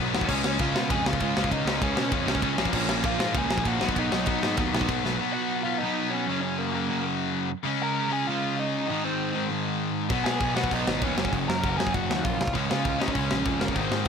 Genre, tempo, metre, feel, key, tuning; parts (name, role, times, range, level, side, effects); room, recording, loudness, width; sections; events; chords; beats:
punk rock; 196 BPM; 4/4; straight; Db major from 5.2 s; A4 = 437 Hz
cranked stack guitar; riff; 0.0-14.1 s; Gb2 to Db4; -29 LUFS; left 16 dB; overdrive
sludgy distorted guitar; riff; 0.0-14.1 s; Gb2 to Db4; -30 LUFS; right 13 dB; overdrive
fuzz picked electric bass; bass; 0.0-5.2, 10.1-14.1 s; Gb1 to Db3; -31 LUFS; equal; overdrive
tight metal drum kit; drums; 0.1-5.1, 10.1-14.1 s; crash cymbal, kick drum, ride cymbal, snare drum; -29 LUFS; equal
bluesy overdriven lead guitar; melody; 0.3-14.1 s; Bb3 to Bb5; -31 LUFS; equal; distortion, ping-pong delay
light reverb; -24 LUFS; side -6 dB against mid
0.0-5.2 A section; 5.2-14.1 B section
drum fill 5.0
0.3 Db; 2.6 Bbm; 3.8 Cb; 6.3 Gb; 7.7 Db; 8.9 Ab; 10.1 Cb; 11.2 Gb; 12.5 Db
| 0.29 0.59 0.90 1.21 | 1.51 1.82 2.12 2.43 | 2.74 3.04 3.35 3.66 | 3.96 4.27 4.58 4.88 | 5.19 5.50 5.81 6.11 | 6.42 6.73 7.04 7.34 | 7.65 7.96 8.26 8.57 | 8.88 9.18 9.49 9.79 | 10.10 10.40 10.71 11.01 | 11.32 11.62 11.93 12.23 | 12.54 12.84 13.14 13.45 | 13.75 14.05